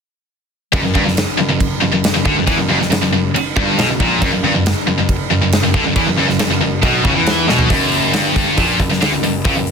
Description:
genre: heavy metal.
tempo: 138 BPM.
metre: 4/4.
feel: straight.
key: F# phrygian dominant.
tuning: A4 = 440 Hz.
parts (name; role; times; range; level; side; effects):
cranked stack guitar; riff; 0.7-7.7 s; F#2 to E3; -20 LUFS; equal; overdrive.
heavy high-gain guitar; riff; 0.7-9.7 s; F#2 to E3; -18 LUFS; left 13 dB; distortion.
heavy high-gain guitar; riff; 0.7-9.7 s; F#2 to E3; -20 LUFS; right 13 dB; distortion.
warm grand piano; bass; 0.7-9.7 s; F#1 to E2; -20 LUFS; right 1 dB; none.
big rock drum kit; drums; 0.7-9.7 s; crash cymbal, hi-hat, kick drum, snare drum, toms; -18 LUFS; equal; none.
room: little or no reverb.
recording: dense, heavily limited modern master.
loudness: -13 LUFS.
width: side -6 dB against mid.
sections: 0.7-7.7 A section; 7.7-9.7 B section.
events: drum fill 7.5.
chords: 0.7 N.C.; 7.7 F#.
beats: | 0.73 1.17 1.60 2.04 | 2.47 2.91 3.34 3.78 | 4.21 4.65 5.09 5.52 | 5.96 6.39 6.83 7.27 | 7.70 8.14 8.58 9.02 | 9.45.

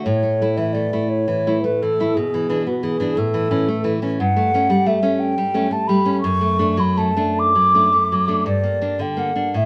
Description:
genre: romantic duo for flute and classical guitar.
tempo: 50-60 BPM (dotted quarters).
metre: 6/8.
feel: rubato.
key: unclear.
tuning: A4 = 440 Hz.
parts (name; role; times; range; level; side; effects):
mellow hollow concert flute; melody; 0.0-9.7 s; F#4 to D6; -22 LUFS; equal; none.
nylon-string guitar; accompaniment; 0.0-9.7 s; F#2 to E4; -22 LUFS; equal; none.
room: wet studio reverb, RT60 0.7 s.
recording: band playing live in one room.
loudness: -19 LUFS.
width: mono.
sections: 0.0-9.7 A section.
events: none.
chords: 0.1 A5; 2.2 E7/B; 3.2 A; 4.2 A7/G; 6.2 D/F#; 8.5 Gm.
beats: | 0.07 1.11 | 2.17 3.18 | 4.21 5.21 | 6.24 7.39 | 8.48 9.58.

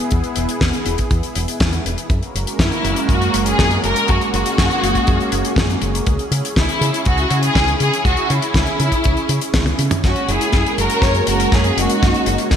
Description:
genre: italo disco.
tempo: 121 BPM.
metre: 4/4.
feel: straight.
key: unclear.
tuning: A4 = 440 Hz.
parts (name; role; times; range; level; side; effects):
lush unison pad; sustained chords; 0.0-12.6 s; G#3 to A#4; -22 LUFS; right 1 dB; chorus, phaser, vintage 12-bit sampler grit.
fingered electric bass with an envelope filter; bass; 0.1-12.6 s; E1 to C#3; -20 LUFS; equal; tube saturation.
damped 70s drum kit; drums; 0.1-12.6 s; hi-hat, snare drum, toms; -22 LUFS; left 2 dB; studio reverb, gated reverb.
kick drum; drums; 0.1-12.6 s; none; -19 LUFS; equal; studio reverb.
warm studio violin section; melody; 2.6-12.5 s; C#4 to C#5; -19 LUFS; left 1 dB; ping-pong delay.
room: moderate lush hall reverb, RT60 1.8 s, small room ambience.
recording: bright 1980s-style digital production.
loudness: -15 LUFS.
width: side -8 dB against mid.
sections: 0.0-10.0 A section; 10.0-12.6 B section.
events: drum fill 9.5-10.0, 10.0-12.6.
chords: 0.0 E; 2.1 F#add9; 6.1 C#m; 10.0 F#add9.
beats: | 0.12 0.61 1.11 1.60 | 2.10 2.60 3.09 3.59 | 4.08 4.58 5.08 5.57 | 6.07 6.56 7.06 7.56 | 8.05 8.55 9.04 9.54 | 10.04 10.53 11.03 11.52 | 12.02 12.51.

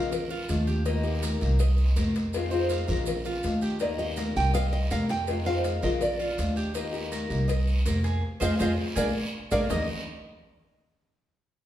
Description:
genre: latin, Cuban son and guajira.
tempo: 163 BPM.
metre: 4/4.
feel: straight.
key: Eb major.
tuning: A4 = 439 Hz.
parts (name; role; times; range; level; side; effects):
nylon-string guitar; melody; 0.0-0.6, 3.8-9.6 s; Bb4 to G5; -31 LUFS; right 2 dB; none.
fingerpicked old ladder-braced acoustic guitar; accompaniment; 0.0-9.9 s; C3 to G4; -33 LUFS; left 4 dB; none.
Cuban tres; arpeggios; 0.0-9.9 s; Eb4 to F5; -35 LUFS; right 3 dB; none.
upright bass; bass; 0.0-9.9 s; Bb1 to F2; -28 LUFS; equal; none.
congas; percussion; 0.1-9.8 s; none; -33 LUFS; left 1 dB; none.
cowbell and bongos; percussion; 0.1-9.8 s; none; -38 LUFS; left 6 dB; none.
guiro; percussion; 0.1-9.8 s; none; -41 LUFS; right 2 dB; none.
maracas; percussion; 0.1-9.8 s; none; -44 LUFS; right 5 dB; none.
room: wet large studio reverb, RT60 1.3 s.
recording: band playing live in one room.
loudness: -24 LUFS.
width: side -12 dB against mid.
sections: 0.0-9.7 A section; 9.7-11.2 B section.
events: band accent 8.2-9.7; drum fill 8.6-9.7.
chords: 0.1 Bb7; 0.9 Eb; 1.6 Cm7; 2.3 Fm7; 3.1 Bb7; 3.8 Eb; 4.5 Cm7; 5.3 Fm7; 6.0 Bb7; 6.8 Eb; 7.5 Cm7; 8.2 Fm7; 9.0 Bb7; 9.7 Eb5.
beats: 0.12 0.49 | 0.86 1.23 1.59 1.96 | 2.33 2.70 3.07 3.44 | 3.81 4.17 4.54 4.91 | 5.28 5.65 6.02 6.39 | 6.76 7.12 7.49 7.86 | 8.23 8.60 8.97 9.34 | 9.71.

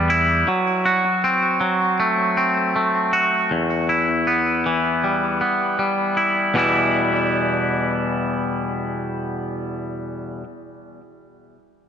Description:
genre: rock.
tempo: 79 BPM.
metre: 4/4.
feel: straight.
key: E minor.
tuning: A4 = 440 Hz.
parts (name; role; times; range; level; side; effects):
twangy electric guitar; arpeggios; 0.0-10.5 s; E2 to F#4; -18 LUFS; equal; analog delay.
room: moderate lush hall reverb, RT60 2.3 s.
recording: nothing above 10.4 kHz.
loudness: -18 LUFS.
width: side -7 dB against mid.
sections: 0.0-6.5 A section; 6.5-9.6 B section.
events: none.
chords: 0.5 F#dim; 3.5 Em.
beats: | 0.47 1.23 1.99 2.75 | 3.50 4.26 5.03 5.78 | 6.54 7.30 8.06 8.82.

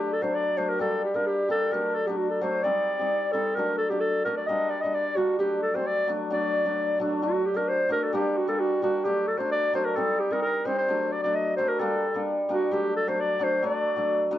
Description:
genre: klezmer.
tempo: 131 BPM.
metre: 2/4.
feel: straight.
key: D phrygian dominant.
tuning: A4 = 445 Hz.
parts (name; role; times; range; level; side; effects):
breathy clarinet; melody; 0.0-14.3 s; D4 to Eb5; -25 LUFS; equal; plate reverb.
hammered dulcimer; accompaniment; 0.0-14.4 s; F#3 to Eb4; -28 LUFS; left 2 dB; none.
room: moderate studio ambience, RT60 0.5 s.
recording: dark, warm production.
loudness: -23 LUFS.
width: side -12 dB against mid.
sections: 0.0-7.2 A section; 7.2-14.4 A section.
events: none.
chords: 0.0 D; 0.8 Gm; 1.7 D; 2.6 Cm; 3.6 D; 4.5 Gm; 5.4 D; 8.1 Gm; 9.1 D; 10.0 Cm; 10.9 D; 11.8 Gm; 12.7 D.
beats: 0.34 | 0.80 1.26 | 1.72 2.18 | 2.64 3.10 | 3.56 4.02 | 4.48 4.94 | 5.40 5.86 | 6.32 6.78 | 7.23 7.69 | 8.15 8.61 | 9.06 9.52 | 9.98 10.43 | 10.89 11.35 | 11.80 12.26 | 12.71 13.17 | 13.62 14.08.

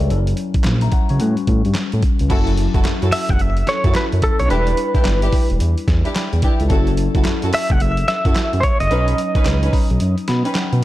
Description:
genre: R&B, new jack swing.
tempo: 109 BPM.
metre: 4/4.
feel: swing 62% on 16ths.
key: unclear.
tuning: A4 = 440 Hz.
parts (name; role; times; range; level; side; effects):
tine electric piano; accompaniment; 0.0-10.8 s; F#3 to B5; -25 LUFS; left 6 dB; phaser.
smooth synth bass; bass; 0.0-10.8 s; E1 to B2; -18 LUFS; equal; none.
boom bap sampler-style drum kit; drums; 0.0-10.8 s; crash cymbal, handclaps, hi-hat, kick drum, snare drum; -19 LUFS; equal; none.
warm studio string section; stabs; 2.3-10.5 s; C#4 to B4; -25 LUFS; right 2 dB; none.
direct-recorded clean electric guitar; melody; 3.1-10.8 s; A4 to F#5; -21 LUFS; right 1 dB; tremolo.
room: digital ambience.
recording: dark, warm production.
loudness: -15 LUFS.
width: side -15 dB against mid.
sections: 0.0-2.3 A section; 2.3-10.8 B section.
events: kick muted 10.0-10.8; tine electric piano fill 10.0-10.8.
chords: 0.1 F#7; 1.2 A13; 2.3 F#m7; 4.5 Em7; 6.7 F#m7; 8.9 Badd9.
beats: | 0.10 0.65 1.20 1.75 | 2.30 2.85 3.40 3.95 | 4.50 5.05 5.60 6.15 | 6.70 7.25 7.80 8.36 | 8.90 9.46 10.01 10.56.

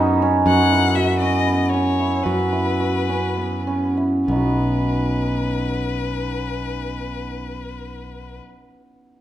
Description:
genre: contemporary instrumental, chamber music in an uneven meter.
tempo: 189-242 BPM (eighths).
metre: 7/8.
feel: straight.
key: B major.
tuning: A4 = 438 Hz.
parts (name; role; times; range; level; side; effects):
hammered dulcimer; arpeggios; 0.0-8.5 s; B3 to B4; -21 LUFS; right 2 dB; none.
modern bright picked electric bass; bass; 0.0-8.4 s; B1 to F#2; -23 LUFS; equal; none.
rich violin; melody; 0.5-8.4 s; B4 to F#5; -27 LUFS; left 7 dB; none.
room: wet recital hall reverb, RT60 1.3 s.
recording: none.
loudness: -18 LUFS.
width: side -12 dB against mid.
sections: 0.5-4.3 A section; 4.3-8.7 B section.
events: slowing down 0.5-4.3.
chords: 0.5 F#sus4; 4.3 B.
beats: 0.21 | 0.46 0.71 0.96 1.21 1.47 1.73 1.99 | 2.25 2.52 2.80 3.08 3.37 3.66 3.96 | 4.27 4.59 4.90 5.22 5.54 5.86 6.17 | 6.49 6.81 7.12 7.44 7.76 8.08 8.39.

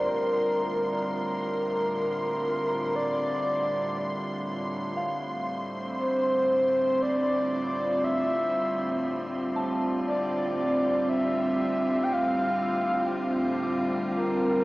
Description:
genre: ambient.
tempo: 59 BPM.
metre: 4/4.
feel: straight.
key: unclear.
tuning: A4 = 440 Hz.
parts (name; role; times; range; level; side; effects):
breathy flute-like synth lead; melody; 0.0-14.6 s; Bb4 to G5; -27 LUFS; equal; wide subtle chorus, tape echo.
evolving wavetable pad; sustained chords; 0.0-14.6 s; A2 to F4; -29 LUFS; equal; chorus, built-in reverb.
soft synth bell; arpeggios; 0.0-14.6 s; G4 to E6; -37 LUFS; equal; chorus, tape echo.
warm sub bass; bass; 0.0-14.6 s; G1; -61 LUFS; equal; none.
clear chamber violin section; texture; 0.0-14.6 s; C6; -39 LUFS; equal; none.
room: wet lush hall reverb, RT60 2.6 s.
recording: small speaker sound.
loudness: -25 LUFS.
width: side -19 dB against mid.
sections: 0.0-14.6 A section.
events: fade-out on synth bell 0.0-14.6; fade-out on violin section 0.0-14.6.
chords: 0.0 Gm7; 5.0 Dm7/G.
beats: | 0.92 1.94 2.95 3.97 | 4.99 6.00 7.02 8.04 | 9.05 10.07 11.09 12.11 | 13.12 14.14.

